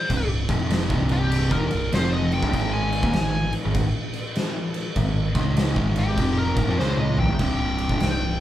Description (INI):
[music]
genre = stoner and doom metal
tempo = 99 BPM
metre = 4/4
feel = swing 64% on 8ths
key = unclear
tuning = A4 = 440 Hz
[part]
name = fuzz lead guitar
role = melody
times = 0.0-8.4 s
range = G4 to Ab5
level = -28 LUFS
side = left 2 dB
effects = wah, distortion
[part]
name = fuzz guitar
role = riff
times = 0.1-8.3 s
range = C2 to Db4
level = -25 LUFS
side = equal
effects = distortion
[part]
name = growling picked electric bass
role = bass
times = 0.1-8.4 s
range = C1 to F2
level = -27 LUFS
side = equal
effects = overdrive
[part]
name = oversized low-tuned drum kit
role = drums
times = 0.1-8.2 s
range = crash cymbal, kick drum, snare drum, toms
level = -24 LUFS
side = equal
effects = none
[sound]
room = light reverb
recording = band playing live in one room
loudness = -20 LUFS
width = side -12 dB against mid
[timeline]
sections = 0.0-8.4 A section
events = lead electric guitar solo 0.0-8.4; drum fill 6.8-7.4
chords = 0.0 Cm; 2.5 Ab5; 7.4 C5